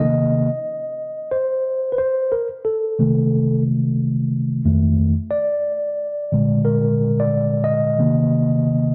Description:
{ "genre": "hip hop", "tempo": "90 BPM", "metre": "4/4", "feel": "swing 65% on 16ths", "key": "C dorian", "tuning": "A4 = 441 Hz", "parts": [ { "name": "mellow tine electric piano", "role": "solo", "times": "0.0-8.9 s", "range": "F2 to Eb5", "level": "-19 LUFS", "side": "equal", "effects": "none" } ], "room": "light reverb, digital ambience", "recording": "dark, warm production", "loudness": "-20 LUFS", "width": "mono", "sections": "0.0-8.9 A section", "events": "tine electric piano solo 0.0-8.9", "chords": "0.0 Cm7; 2.7 Cm6; 4.7 F7; 5.3 Bb7; 8.0 Cm7", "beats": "0.66 1.32 1.99 | 2.66 3.33 3.99 4.66 | 5.33 5.99 6.66 7.33 | 7.99 8.66" }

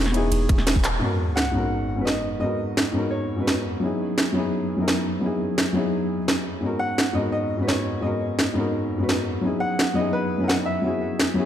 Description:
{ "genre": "liquid drum and bass", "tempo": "171 BPM", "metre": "4/4", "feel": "straight", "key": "G# minor", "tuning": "A4 = 435 Hz", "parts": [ { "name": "warm baby grand piano", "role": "melody", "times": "0.0-3.6, 6.8-11.5 s", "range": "B4 to F#5", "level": "-30 LUFS", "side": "left 1 dB", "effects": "ping-pong delay" }, { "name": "felt-muted upright piano", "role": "accompaniment", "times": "0.0-11.5 s", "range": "G#2 to A#5", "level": "-24 LUFS", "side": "left 1 dB", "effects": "low-pass filter, ping-pong delay" }, { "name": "long sustained 808-style bass", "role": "bass", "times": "0.0-1.0 s", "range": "E1", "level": "-24 LUFS", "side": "equal", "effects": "none" }, { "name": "drum and bass drum kit", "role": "drums", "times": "0.1-11.3 s", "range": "handclaps, hi-hat, ride cymbal, snare drum", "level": "-25 LUFS", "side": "right 1 dB", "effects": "overdrive, studio reverb" }, { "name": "electronic kick drum", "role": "drums", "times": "0.5-0.8 s", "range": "none", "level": "-20 LUFS", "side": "equal", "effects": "overdrive, studio reverb" }, { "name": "sub drop", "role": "sound effects", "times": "1.0-2.4 s", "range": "none", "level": "-28 LUFS", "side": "equal", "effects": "none" } ], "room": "moderate concert hall reverb, RT60 1.9 s, digital ambience", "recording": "dark, warm production", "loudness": "-21 LUFS", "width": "side -10 dB against mid", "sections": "0.0-1.0 A section; 1.0-11.5 B section", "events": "drop 0.0-1.0; drum fill 0.8; band accent 0.8; impact 1.0-2.4", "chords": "0.0 F#9sus4 (rootless); 1.0 G#m11; 3.8 F#13sus4; 6.6 G#m11; 9.4 F#13sus4", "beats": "0.32 0.67 | 1.02 1.37 1.72 2.07 | 2.42 2.77 3.12 3.48 | 3.83 4.18 4.53 4.88 | 5.23 5.58 5.93 6.28 | 6.63 6.98 7.33 7.68 | 8.04 8.39 8.74 9.09 | 9.44 9.79 10.14 10.49 | 10.84 11.19" }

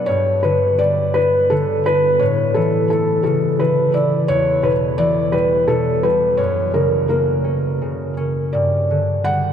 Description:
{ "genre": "children's music, lullaby", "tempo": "86 BPM", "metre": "3/4", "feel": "rubato", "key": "unclear", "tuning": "A4 = 439 Hz", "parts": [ { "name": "felt-muted upright piano", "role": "melody", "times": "0.0-9.5 s", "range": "A4 to F#5", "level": "-17 LUFS", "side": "equal", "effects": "none" }, { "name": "concert harp", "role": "accompaniment", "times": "0.0-9.5 s", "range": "E2 to F#5", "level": "-20 LUFS", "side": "left 1 dB", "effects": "none" } ], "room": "wet cathedral reverb, RT60 6.0 s", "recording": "in a vast, echoing space", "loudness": "-15 LUFS", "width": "side -8 dB against mid", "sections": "0.1-9.5 A section", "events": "none", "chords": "0.1 G; 2.2 A; 4.3 Em; 6.4 F#; 8.5 G5", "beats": "| 0.08 0.80 1.51 | 2.21 2.91 3.60 | 4.29 4.99 5.68 | 6.39 7.09 7.81 | 8.54 9.26" }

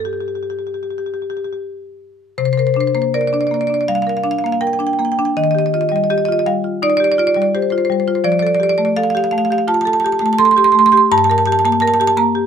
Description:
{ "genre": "classical, contemporary piece for solo marimba", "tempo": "83 BPM", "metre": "4/4", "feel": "uneven beats, rubato", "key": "unclear", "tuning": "A4 = 440 Hz", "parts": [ { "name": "marimba with medium hard mallets", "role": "solo", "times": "0.0-12.5 s", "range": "G2 to C6", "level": "-14 LUFS", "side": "equal", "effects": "none" } ], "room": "light reverb", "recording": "close, detailed microphones", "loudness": "-13 LUFS", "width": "side -8 dB against mid", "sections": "0.0-2.4 A section; 2.4-12.5 B section", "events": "none", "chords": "0.0 Gm7; 2.4 Csus2; 5.4 Eb69; 8.2 F69; 11.1 Gmadd9", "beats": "0.05 0.82 1.60 | 2.38 3.14 3.88 4.62 | 5.36 6.11 6.83 7.54 | 8.25 8.96 9.67 10.38 | 11.09 11.81" }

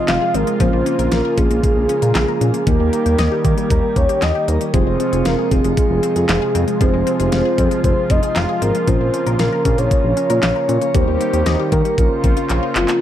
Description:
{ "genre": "synth-pop", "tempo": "116 BPM", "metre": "4/4", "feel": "straight", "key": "Bb minor", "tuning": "A4 = 440 Hz", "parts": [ { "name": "soft octave-layered synth lead", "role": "melody", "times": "0.0-13.0 s", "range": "F4 to F5", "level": "-20 LUFS", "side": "left 1 dB", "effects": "chorus, tremolo, slapback echo, shimmer reverb" }, { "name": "muted felt-like synth keys", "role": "accompaniment", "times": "0.0-13.0 s", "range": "Ab3 to Bb4", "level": "-24 LUFS", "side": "right 5 dB", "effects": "chorus, shimmer reverb" }, { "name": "brassy analog pad", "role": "sustained chords", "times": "0.0-13.0 s", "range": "C3 to C5", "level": "-24 LUFS", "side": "equal", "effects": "chorus, shimmer reverb" }, { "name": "analog pluck", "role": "arpeggios", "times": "0.0-13.0 s", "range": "Eb3 to F5", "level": "-26 LUFS", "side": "left 11 dB", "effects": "chorus, slapback echo, shimmer reverb" }, { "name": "smooth synth bass", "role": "bass", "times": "0.1-12.9 s", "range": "F1 to Eb3", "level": "-19 LUFS", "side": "equal", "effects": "none" }, { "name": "pop drum kit", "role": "drums", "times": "0.1-13.0 s", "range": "handclaps, hi-hat, kick drum, snare drum", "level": "-19 LUFS", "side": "equal", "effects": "none" } ], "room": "light reverb", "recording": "dark, warm production", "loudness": "-14 LUFS", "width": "side -11 dB against mid", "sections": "0.0-13.0 A section", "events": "drum fill 12.5-13.0", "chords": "0.0 Fm; 0.6 Bbm; 2.7 Eb; 4.7 Fm; 8.9 Bbm; 10.9 Eb; 12.0 Bbmadd9", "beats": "0.08 | 0.60 1.12 1.64 2.15 | 2.67 3.19 3.70 4.22 | 4.74 5.26 5.77 6.29 | 6.81 7.33 7.84 8.36 | 8.88 9.39 9.91 10.43 | 10.95 11.46 11.98 12.50" }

